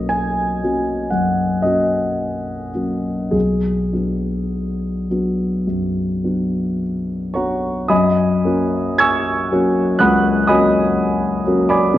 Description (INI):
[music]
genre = classical, impressionist solo piano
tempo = 49-64 BPM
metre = 4/4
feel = rubato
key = F# mixolydian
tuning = A4 = 439 Hz
[part]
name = warm grand piano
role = solo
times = 0.0-12.0 s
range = B1 to G#6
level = -16 LUFS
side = equal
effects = none
[sound]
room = moderate recital hall reverb, RT60 1.4 s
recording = worn, warbling old tape, cassette tape, warbly pitch drift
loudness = -16 LUFS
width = side -13 dB against mid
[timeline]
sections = 0.0-7.9 A section; 7.9-12.0 A section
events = none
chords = 0.0 Bmaj9; 3.3 Bm6; 7.9 F#6